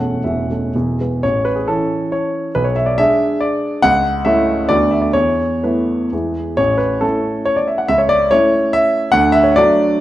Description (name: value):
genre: classical, romantic triple-time dance for piano with dotted rhythms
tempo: 114-156 BPM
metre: 3/4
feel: rubato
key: A major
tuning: A4 = 441 Hz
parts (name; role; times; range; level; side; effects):
- dark grand piano; solo; 0.0-10.0 s; E1 to F#5; -13 LUFS; equal; none
room: moderate recital hall reverb, RT60 1.4 s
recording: dark, warm production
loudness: -13 LUFS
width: side -14 dB against mid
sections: 0.0-1.2 A section; 1.2-10.0 B section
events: none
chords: 0.0 A/E; 0.7 E; 1.2 A; 2.5 G#dim/B; 3.8 A/C#; 4.7 Bm7/D; 5.1 Esus4; 6.1 E; 6.6 A; 7.9 A/C#; 9.1 D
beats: 0.23 0.74 | 1.23 1.68 2.13 | 2.55 2.98 3.42 | 3.83 4.25 4.69 | 5.14 5.64 6.13 | 6.59 7.03 7.48 | 7.89 8.32 8.73 | 9.12 9.55